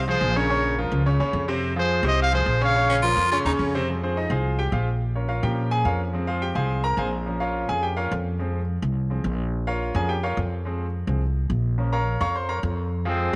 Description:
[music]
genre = latin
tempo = 213 BPM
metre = 4/4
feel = straight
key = F minor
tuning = A4 = 443 Hz
[part]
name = bright grand piano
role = accompaniment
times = 0.0-13.4 s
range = C3 to Db6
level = -28 LUFS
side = equal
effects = none
[part]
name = upright bass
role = bass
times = 0.0-13.4 s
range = Bb1 to Bb2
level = -27 LUFS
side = equal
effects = none
[part]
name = bright trumpet section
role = melody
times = 0.1-3.0, 13.1-13.3 s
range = Ab3 to F5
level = -26 LUFS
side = equal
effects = none
[part]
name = raspy baritone saxophone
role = second line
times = 2.9-3.9 s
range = Db4 to F4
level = -27 LUFS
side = equal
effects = none
[sound]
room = moderate echo chamber reverb, RT60 2.1 s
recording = none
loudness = -24 LUFS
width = mono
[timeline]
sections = 0.0-3.9 A section; 3.9-12.9 B section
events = grand piano solo 3.9-12.9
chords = 0.5 Bbm; 1.6 Fm; 2.8 Bbm; 3.9 Fm; 5.0 Bbm; 6.1 Fm; 7.3 Bbm; 8.4 Fm; 9.5 Bbm; 10.7 Fm; 11.8 Bbm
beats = 0.21 | 0.50 0.78 1.06 1.34 | 1.62 1.91 2.19 2.47 | 2.75 3.04 3.32 3.60 | 3.88 4.17 4.45 4.73 | 5.01 5.29 5.58 5.86 | 6.14 6.42 6.71 6.99 | 7.27 7.55 7.84 8.12 | 8.40 8.68 8.96 9.25 | 9.53 9.81 10.09 10.38 | 10.66 10.94 11.22 11.50 | 11.78 12.06 12.35 12.63 | 12.91 13.19

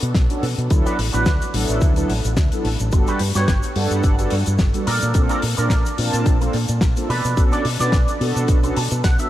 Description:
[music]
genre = nu-disco, nu disco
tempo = 108 BPM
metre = 4/4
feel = swing 55% on 16ths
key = unclear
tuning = A4 = 440 Hz
[part]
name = fingered electric bass with an envelope filter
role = bass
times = 0.0-9.2 s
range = G1 to B2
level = -22 LUFS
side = equal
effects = none
[part]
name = damped 70s drum kit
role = drums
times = 0.0-9.3 s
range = hi-hat, shaker, snare drum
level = -26 LUFS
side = left 2 dB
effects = studio reverb
[part]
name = electric guitar with an envelope filter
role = riff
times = 0.1-9.3 s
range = D4 to A5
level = -27 LUFS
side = right 2 dB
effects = analog chorus, tape echo
[part]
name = electronic kick drum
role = drums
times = 0.2-9.2 s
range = none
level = -18 LUFS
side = equal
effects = studio reverb
[part]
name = mellow synth brass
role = accompaniment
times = 0.3-9.3 s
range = F#3 to A5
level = -24 LUFS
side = right 1 dB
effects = chorus, tape echo
[sound]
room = light reverb, small room ambience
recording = none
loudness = -16 LUFS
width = side -14 dB against mid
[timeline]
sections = 0.0-9.3 A section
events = clean electric guitar fill 8.5-9.3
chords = 0.0 Bm7; 0.7 D6; 2.9 Gmaj7; 4.9 Bbmaj7; 7.1 Bm7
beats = 0.15 | 0.71 1.26 1.82 2.37 | 2.93 3.48 4.04 4.59 | 5.15 5.71 6.26 6.82 | 7.37 7.93 8.48 9.04

